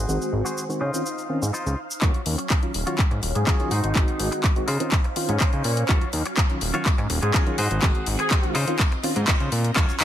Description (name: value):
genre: filtered disco house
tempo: 124 BPM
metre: 4/4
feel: straight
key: Eb dorian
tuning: A4 = 440 Hz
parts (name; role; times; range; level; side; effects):
- phased string machine; sustained chords; 0.0-10.0 s; Gb3 to Gb5; -34 LUFS; right 1 dB; ensemble chorus, phaser, sidechain pumping, low-pass filter
- clean electric guitar; riff; 0.0-9.9 s; Eb4 to Db5; -31 LUFS; left 1 dB; sidechain pumping, low-pass filter
- fat analog bass; bass; 0.0-10.0 s; Eb1 to Db3; -24 LUFS; equal; sidechain pumping, low-pass filter
- reed electric piano; accompaniment; 0.1-9.9 s; Eb3 to Gb4; -30 LUFS; equal; fast tremolo, phaser, sidechain pumping, low-pass filter
- house drum kit; drums; 0.1-10.0 s; handclaps, hi-hat, shaker; -27 LUFS; left 1 dB; overdrive, sidechain pumping on perc, small room ambience, sidechain pumping on hats
- electronic kick drum; drums; 2.0-9.9 s; none; -21 LUFS; equal; overdrive, small room ambience
- warm horn section; melody; 3.4-8.6 s; Db4 to Ab4; -30 LUFS; left 1 dB; sidechain pumping, low-pass filter, dub echo
room: little or no reverb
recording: none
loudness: -20 LUFS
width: side -11 dB against mid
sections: 0.0-2.0 A section; 2.0-10.0 B section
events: filter sweep 0.0-2.0, 2.0-10.0; build-up 2.0-10.0; drum fill 2.0-10.0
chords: 0.0 Ab7; 0.8 Dbmaj9; 2.0 Ebm9; 3.7 Ab7; 4.7 Dbmaj9; 5.9 Ebm9; 7.6 Ab7; 8.6 Dbmaj9